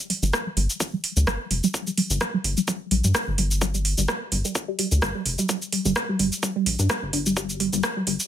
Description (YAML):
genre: minimal techno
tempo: 128 BPM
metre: 4/4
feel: swing 55% on 16ths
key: G minor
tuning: A4 = 439 Hz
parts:
  - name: resonant blip pluck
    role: riff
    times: 0.1-8.1 s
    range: G3 to D4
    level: -26 LUFS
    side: equal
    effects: phaser, analog chorus, sidechain pumping, ping-pong delay
  - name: house drum kit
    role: drums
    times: 0.1-8.3 s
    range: cabasa, hi-hat, rim click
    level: -25 LUFS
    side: right 1 dB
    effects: soft clipping on snare
  - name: rubbery square bass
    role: bass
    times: 0.2-8.2 s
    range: F1 to G2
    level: -24 LUFS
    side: equal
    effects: sidechain pumping
  - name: electronic kick drum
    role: drums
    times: 0.3-7.9 s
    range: none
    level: -30 LUFS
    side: equal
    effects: high-pass filter on kick, high-pass filter on room
room: light reverb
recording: dense, heavily limited modern master, high-pass filter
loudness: -22 LUFS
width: side -10 dB against mid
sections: 0.0-8.3 A section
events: build-up 0.0-8.3; filter sweep on synth arpeggio sound 0.0-8.3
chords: none